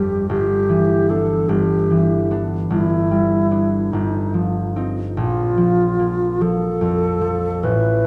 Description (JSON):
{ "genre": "classical, impressionist duo for alto flute and harp", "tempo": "49 BPM (dotted quarters)", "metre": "6/8", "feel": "rubato", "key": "unclear", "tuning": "A4 = 442 Hz", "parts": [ { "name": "alto flute", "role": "melody", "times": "0.0-8.1 s", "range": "Eb4 to B4", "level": "-23 LUFS", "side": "equal", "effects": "none" }, { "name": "concert harp", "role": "accompaniment", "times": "0.0-8.1 s", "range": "G1 to Eb4", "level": "-20 LUFS", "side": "equal", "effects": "none" } ], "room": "wet scoring stage reverb, RT60 2.1 s", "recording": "dark, warm production", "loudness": "-19 LUFS", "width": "mono", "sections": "0.0-8.1 A section", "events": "none", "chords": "0.3 G6; 2.7 G; 3.9 Fsus2/G; 5.2 Bbsus2" }